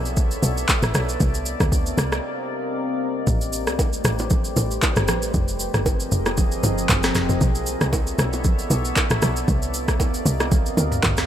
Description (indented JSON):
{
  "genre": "amapiano",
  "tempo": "116 BPM",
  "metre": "4/4",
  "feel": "swing 55% on 16ths",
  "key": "unclear",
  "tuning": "A4 = 440 Hz",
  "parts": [
    { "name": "deep dark ambient pad", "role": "sustained chords", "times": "0.0-11.3 s", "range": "F3 to F5", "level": "-27 LUFS", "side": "left 1 dB", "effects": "chorus, built-in reverb, sidechain pumping" },
    { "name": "tight log drum bass", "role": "bass", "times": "0.0-11.3 s", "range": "F1 to D2", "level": "-23 LUFS", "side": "equal", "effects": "none" },
    { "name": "smooth R&B drum kit", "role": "drums", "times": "0.1-11.3 s", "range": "handclaps, kick drum, rim click, shaker, snare drum, toms", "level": "-21 LUFS", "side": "equal", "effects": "overdrive" },
    { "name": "congas and bongos", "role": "percussion", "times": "3.3-11.2 s", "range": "none", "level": "-29 LUFS", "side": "right 5 dB", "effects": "none" }
  ],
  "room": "little or no reverb",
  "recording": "none",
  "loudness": "-19 LUFS",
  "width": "side -10 dB against mid",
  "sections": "0.0-11.3 A section",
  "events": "break 2.2-3.3",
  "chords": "0.0 Bm11; 1.2 Cm11; 3.3 Am11; 5.3 Fm11; 7.4 Bm11; 9.5 Cm11",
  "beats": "0.17 0.69 | 1.20 1.72 2.24 2.76 | 3.27 3.79 4.31 4.83 | 5.34 5.86 6.38 6.89 | 7.41 7.93 8.45 8.96 | 9.48 10.00 10.52 11.03"
}